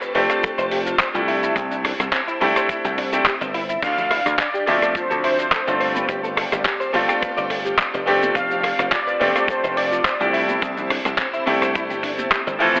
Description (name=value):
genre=nu-disco, nu disco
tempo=106 BPM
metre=4/4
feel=straight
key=unclear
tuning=A4 = 444 Hz
part: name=bright concert grand piano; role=accompaniment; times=0.0-12.8 s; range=E3 to E5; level=-21 LUFS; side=equal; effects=sidechain pumping, analog delay
part: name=string machine, full ensemble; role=sustained chords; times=0.0-12.8 s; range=C4 to A5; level=-30 LUFS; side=equal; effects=phaser, ensemble chorus, sidechain pumping
part: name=direct-recorded clean electric guitar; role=riff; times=0.0-12.8 s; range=C4 to G5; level=-27 LUFS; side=left 1 dB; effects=ensemble chorus, analog delay
part: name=dusty soul sampler-style drum kit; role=drums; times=0.0-12.8 s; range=crash cymbal, handclaps, hi-hat, rim click, shaker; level=-23 LUFS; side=equal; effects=overdrive
part: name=dry thumbed slap bass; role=bass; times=0.1-12.6 s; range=F1 to D2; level=-27 LUFS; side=equal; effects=none
part: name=kick drum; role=drums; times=0.4-12.4 s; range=none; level=-25 LUFS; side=equal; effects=none
part: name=wide unison lead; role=melody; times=3.8-10.3 s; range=C5 to F5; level=-23 LUFS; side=equal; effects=analog delay
part: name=congas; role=percussion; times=4.0-12.8 s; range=none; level=-36 LUFS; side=right 1 dB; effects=none
room=moderate plate reverb, RT60 1.1 s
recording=echo-heavy mix, telephone sound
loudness=-17 LUFS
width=side -26 dB against mid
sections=0.0-12.8 A section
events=none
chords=0.0 F6; 1.3 C6; 3.8 Dm7; 5.8 G7sus4; 8.1 F6; 10.3 C6